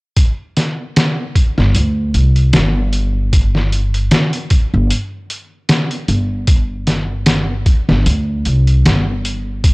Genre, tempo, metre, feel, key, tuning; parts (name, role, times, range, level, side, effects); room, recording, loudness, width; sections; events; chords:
trip hop; 76 BPM; 4/4; swing 55% on 16ths; A4 = 439 Hz
trip hop sampler-style drum kit; drums; 0.2-9.7 s; hi-hat, kick drum, snare drum; -14 LUFS; equal; studio reverb
upright bass; bass; 1.6-9.7 s; G1 to D2; -14 LUFS; equal; tube saturation
little or no reverb; dry, gritty hardware recording, cassette tape; -13 LUFS; side -26 dB against mid
0.2-9.7 A section